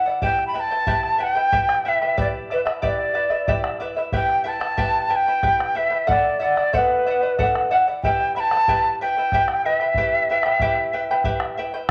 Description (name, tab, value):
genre	andean folk, Andean ensemble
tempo	92 BPM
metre	3/4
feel	straight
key	E minor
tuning	A4 = 442 Hz
part	charango	accompaniment	0.0-11.9 s	E4 to G5	-26 LUFS	equal	none
part	bombo	percussion	0.1-11.9 s	none	-29 LUFS	equal	none
part	bright large quena	melody	0.2-11.6 s	B4 to B5	-22 LUFS	equal	none
room	moderate large studio reverb, RT60 1.1 s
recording	none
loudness	-21 LUFS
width	mono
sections	0.0-11.9 A section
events	none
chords	0.2 Em; 2.2 G/E; 4.1 Em; 6.1 D/E; 8.0 Em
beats	| 0.22 0.87 1.53 | 2.18 2.83 3.48 | 4.13 4.79 5.44 | 6.09 6.74 7.38 | 8.03 8.68 9.32 | 9.97 10.61 11.25 | 11.89